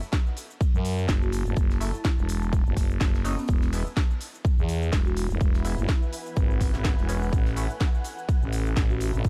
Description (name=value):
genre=bass house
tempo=125 BPM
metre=4/4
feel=swing 55% on 16ths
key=F# minor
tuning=A4 = 440 Hz
part: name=house drum kit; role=drums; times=0.0-9.3 s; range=cabasa, hi-hat, snare drum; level=-37 LUFS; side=equal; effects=none
part: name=granular cloud pad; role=texture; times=0.1-9.3 s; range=E4 to C#6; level=-44 LUFS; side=equal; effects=built-in reverb, sidechain pumping
part: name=electronic kick drum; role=drums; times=0.1-9.3 s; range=none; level=-26 LUFS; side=equal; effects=overdrive
part: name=tight metal drum kit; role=drums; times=0.1-9.3 s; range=hi-hat, ride cymbal, snare drum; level=-50 LUFS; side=equal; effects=none
part: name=growling FM bass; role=bass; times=0.7-9.3 s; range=E1 to F#2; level=-29 LUFS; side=equal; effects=tube saturation, sidechain pumping
part: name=vibraphone with soft mallets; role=melody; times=1.2-6.0, 8.9-9.1 s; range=B3 to F#4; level=-38 LUFS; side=equal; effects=digital delay
part: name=band-passed chord stab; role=stabs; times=1.8-7.7 s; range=F#3 to E4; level=-42 LUFS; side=equal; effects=chorus, phaser, sidechain pumping, digital delay
room=small room ambience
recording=dark, warm production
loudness=-25 LUFS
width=mono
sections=0.0-9.3 A section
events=none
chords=0.0 F#m7; 3.5 E; 7.3 A